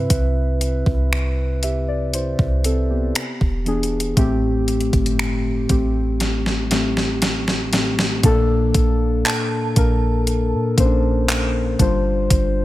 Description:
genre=contemporary R&B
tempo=59 BPM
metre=4/4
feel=straight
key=unclear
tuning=A4 = 440 Hz
part: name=muted felt-like synth keys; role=accompaniment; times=0.0-12.6 s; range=A2 to E5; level=-21 LUFS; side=left 1 dB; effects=chorus
part: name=soft 808-style bass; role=bass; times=0.0-12.6 s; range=E1 to Bb2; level=-22 LUFS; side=equal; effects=none
part: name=gated 80s digital drum machine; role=drums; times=0.1-12.5 s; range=finger snaps, handclaps, hi-hat, kick drum, snare drum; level=-20 LUFS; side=equal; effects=gated reverb, gated reverb snare, overdrive
part: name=synth chime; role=texture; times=9.3-11.0 s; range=A5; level=-31 LUFS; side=right 5 dB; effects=ensemble chorus, digital delay
room=light reverb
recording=none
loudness=-17 LUFS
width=side -16 dB against mid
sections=0.0-8.2 A section; 8.2-12.6 B section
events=drum fill 6.2-8.2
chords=0.0 Cmaj7; 3.2 E7; 4.2 Am7; 8.2 Bbmaj7; 11.8 G7sus4

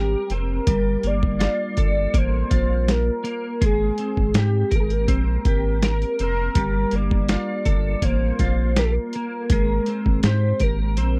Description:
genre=indie pop, bedroom pop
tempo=82 BPM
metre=4/4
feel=straight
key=G phrygian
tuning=A4 = 445 Hz
part: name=warm velvety synth lead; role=melody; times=0.0-11.2 s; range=G4 to D5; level=-28 LUFS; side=equal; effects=lush chorus, tape echo
part: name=twelve-string electric guitar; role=accompaniment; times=0.0-11.2 s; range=G3 to Bb4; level=-29 LUFS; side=equal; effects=ensemble chorus, warbly pitch drift
part: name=round analog bass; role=bass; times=0.0-11.2 s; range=F1 to Ab2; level=-24 LUFS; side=equal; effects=none
part: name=lo-fi sampler-style drum kit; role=drums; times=0.3-11.1 s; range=hi-hat, kick drum, snare drum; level=-25 LUFS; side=equal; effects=overdrive
room=little or no reverb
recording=dry, close 1970s-style studio recording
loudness=-21 LUFS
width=mono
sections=0.0-11.2 A section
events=none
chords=0.0 Abmaj9; 0.7 Gm9; 3.6 Abmaj9; 6.6 Gm9; 9.5 Abmaj9

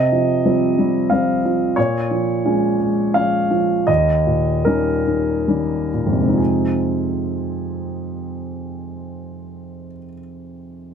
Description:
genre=neoclassical minimalist piano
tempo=64-92 BPM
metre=3/4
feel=rubato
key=F minor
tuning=A4 = 440 Hz
part: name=warm concert grand piano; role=solo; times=0.0-10.9 s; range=Eb2 to F5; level=-17 LUFS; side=equal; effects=none
room=moderate small room reverb, RT60 0.5 s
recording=none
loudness=-16 LUFS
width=side -7 dB against mid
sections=0.0-6.4 A section; 6.4-10.9 B section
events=slowing down 0.8-6.4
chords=0.0 Csus4; 1.8 Bbm7; 3.9 Eb7; 6.4 Fm7

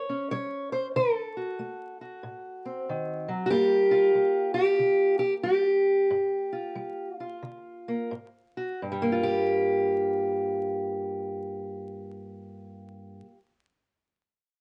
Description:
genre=acoustic country blues, solo or duo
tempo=83-94 BPM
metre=4/4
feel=swing 64% on 8ths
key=G minor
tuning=A4 = 441 Hz
part: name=fingerpicked steel-string acoustic guitar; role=solo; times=0.0-13.4 s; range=G2 to Db5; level=-28 LUFS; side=equal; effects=slapback echo
room=light reverb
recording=recorded outdoors, with no room sound, vinyl crackle, nothing above 10.5 kHz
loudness=-27 LUFS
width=mono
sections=0.0-8.8 A section; 8.8-11.7 B section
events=slowing down 3.5-8.8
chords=0.0 Eb7 (rootless); 0.9 D7b9; 3.5 Gm7; 8.1 F#sus2/G#; 8.8 Gm7

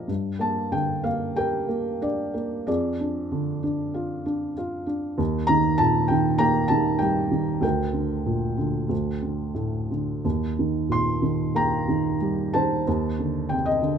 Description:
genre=classical, lyrical solo piano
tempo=89-100 BPM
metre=4/4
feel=rubato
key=G minor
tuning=A4 = 440 Hz
part: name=felt-muted upright piano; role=solo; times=0.0-14.0 s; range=D2 to C6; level=-22 LUFS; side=right 1 dB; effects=none
room=light reverb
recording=close, detailed microphones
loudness=-22 LUFS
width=side -7 dB against mid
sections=0.1-14.0 A section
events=none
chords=0.1 Gm; 2.7 Fm6; 5.2 Eb; 7.6 Gm/D; 8.9 D5; 10.2 Eb; 12.9 Cmadd9/Eb

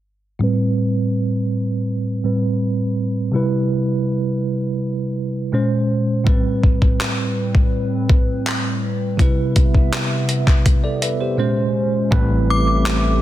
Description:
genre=contemporary R&B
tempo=82 BPM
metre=4/4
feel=straight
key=A minor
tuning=A4 = 440 Hz
part: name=bell-like tine electric piano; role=accompaniment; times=0.4-13.2 s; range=A2 to E5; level=-19 LUFS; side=right 1 dB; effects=medium stereo tremolo, low-pass filter
part: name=hollow soft pad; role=sustained chords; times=6.9-13.2 s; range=A2 to E5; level=-26 LUFS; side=left 2 dB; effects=chorus, low-pass filter
part: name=dusty soul sampler-style drum kit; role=drums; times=6.3-13.0 s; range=handclaps, hi-hat, kick drum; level=-17 LUFS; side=equal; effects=overdrive
part: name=fat analog bass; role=bass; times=12.1-13.2 s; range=A1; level=-18 LUFS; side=left 1 dB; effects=none
part: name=synth chime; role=melody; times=12.5-13.2 s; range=D6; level=-21 LUFS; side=left 1 dB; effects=ensemble chorus, ping-pong delay
room=digital ambience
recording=dense, heavily limited modern master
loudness=-16 LUFS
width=side -13 dB against mid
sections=0.4-12.1 A section; 12.1-13.2 B section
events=filter sweep 0.4-12.1; hi-hats muted 12.1-13.2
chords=0.4 Am9; 3.3 Cmaj7; 5.5 Bbm9; 6.3 Am9; 9.2 Cmaj7; 11.4 Bbm9; 12.1 Am9

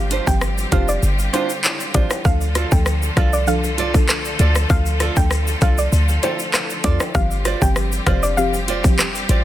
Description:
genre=dancehall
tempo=98 BPM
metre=4/4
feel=straight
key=D minor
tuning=A4 = 440 Hz
part: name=deep mellow chord stab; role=accompaniment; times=0.0-9.1 s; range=F3 to A4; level=-26 LUFS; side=left 1 dB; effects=chorus
part: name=bright studio string section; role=sustained chords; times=0.0-9.4 s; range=D3 to A4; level=-27 LUFS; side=left 2 dB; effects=sidechain pumping
part: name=short 808-style bass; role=bass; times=0.0-9.4 s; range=F1 to E2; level=-19 LUFS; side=equal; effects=none
part: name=downlifter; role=sound effects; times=0.0-2.3 s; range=none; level=-44 LUFS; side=equal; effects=none
part: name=nylon-string guitar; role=arpeggios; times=0.1-9.4 s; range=D4 to D5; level=-26 LUFS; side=right 7 dB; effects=none
part: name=island pop drum kit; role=drums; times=0.1-9.4 s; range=handclaps, hi-hat, kick drum, rim click, shaker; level=-19 LUFS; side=equal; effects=soft clipping on snare
part: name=tube shaker and timbales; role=percussion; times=0.1-9.3 s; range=none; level=-32 LUFS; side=left 3 dB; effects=none
part: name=soft round pluck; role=melody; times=0.3-8.8 s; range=C5 to G5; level=-26 LUFS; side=equal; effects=chorus, tape echo
room=digital ambience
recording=dense, heavily limited modern master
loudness=-16 LUFS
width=side -13 dB against mid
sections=0.0-9.4 A section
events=none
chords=0.0 G7sus4; 2.3 Dm; 7.2 G7sus4

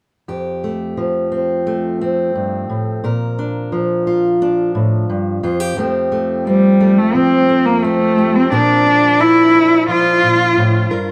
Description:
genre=folk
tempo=88 BPM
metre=4/4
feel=straight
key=F major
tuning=A4 = 440 Hz
part: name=fingerpicked steel-string acoustic guitar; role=accompaniment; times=0.3-11.1 s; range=F2 to Bb4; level=-19 LUFS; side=equal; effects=none
part: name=rich cello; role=melody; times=6.5-10.9 s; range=G3 to F4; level=-14 LUFS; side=equal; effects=plate reverb, tape echo
room=moderate studio ambience, RT60 0.5 s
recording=dark, warm production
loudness=-15 LUFS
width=mono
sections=0.3-5.8 A section; 5.8-11.1 B section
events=none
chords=0.3 Fadd9; 3.0 Bb; 5.4 Fsus2; 5.8 Fadd9; 8.5 Bb

